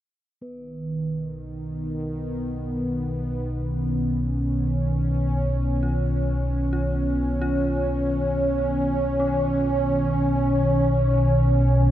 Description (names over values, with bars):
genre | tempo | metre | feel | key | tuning
dark ambient drone | free time | none | none | unclear | A4 = 439 Hz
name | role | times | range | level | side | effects
sweeping resonant pad | sustained chords | 0.4-11.9 s | D#3 to C#4 | -24 LUFS | right 1 dB | chorus
deep rumbling drone | drone | 1.3-11.9 s | B1 to B2 | -24 LUFS | equal | built-in reverb, lush chorus
bronze singing bowl | texture | 0.4-11.9 s | B3 to B4 | -46 LUFS | left 1 dB | none
dark detuned synth bell | arpeggios | 5.8-11.9 s | C#4 to E#4 | -36 LUFS | left 2 dB | chorus, tremolo, diffuse ambient delay
room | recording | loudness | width
moderate huge ambient reverb, RT60 7.5 s | none | -21 LUFS | side -12 dB against mid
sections
0.4-11.9 A section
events
fade-in on synth bell 0.4-11.9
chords
0.4 Bsus2